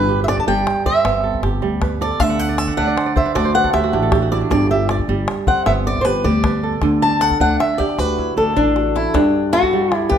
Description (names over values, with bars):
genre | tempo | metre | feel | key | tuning
west african traditional, West African string and xylophone music | 104 BPM (dotted quarters) | 12/8 | straight | G major | A4 = 443 Hz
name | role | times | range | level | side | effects
fingerpicked swing-style acoustic guitar | melody | 0.0-10.2 s | D4 to A5 | -18 LUFS | left 1 dB | none
kora | arpeggios | 0.0-10.2 s | G2 to F#5 | -20 LUFS | right 5 dB | none
upright bass | bass | 0.0-9.1 s | G1 to D2 | -21 LUFS | left 1 dB | none
calabash | percussion | 0.3-10.2 s | none | -24 LUFS | left 2 dB | none
room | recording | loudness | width
moderate recital hall reverb, RT60 1.3 s | minimal, uncompressed stereo recording | -15 LUFS | side -8 dB against mid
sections
0.0-9.1 A section; 9.1-10.2 B section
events
steel-string acoustic guitar solo 0.0-9.1; kora fill 2.3-4.5; drum fill 8.2-9.1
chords
0.0 G; 2.2 D; 4.5 G; 6.8 D; 9.1 G5